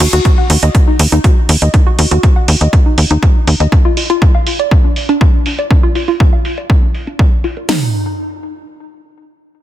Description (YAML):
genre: melodic techno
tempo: 121 BPM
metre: 4/4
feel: straight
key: unclear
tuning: A4 = 438 Hz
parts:
  - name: warbly dusty pluck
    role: arpeggios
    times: 0.0-7.9 s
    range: D4 to Gb5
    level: -18 LUFS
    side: left 1 dB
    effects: chorus, sidechain pumping, tape echo
  - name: tight sequencer bass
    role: bass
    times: 0.0-3.7 s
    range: Eb2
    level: -10 LUFS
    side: equal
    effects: sidechain pumping
  - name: electronic hi-hat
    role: drums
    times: 0.0-7.7 s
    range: none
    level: -19 LUFS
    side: right 2 dB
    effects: low-pass filter on hats, studio reverb, low-pass filter on toms, low-pass filter on cymbals
  - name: techno drum kit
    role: drums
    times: 0.3-7.8 s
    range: hi-hat, kick drum, snare drum, toms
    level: -10 LUFS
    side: equal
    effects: studio reverb
room: little or no reverb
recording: dense, heavily limited modern master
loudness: -9 LUFS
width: side -13 dB against mid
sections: 0.0-7.7 A section; 7.7-9.6 B section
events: filter sweep on synth arpeggio sound 0.0-7.7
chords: 0.0 Ebm; 3.7 Bb (rootless); 7.7 N.C.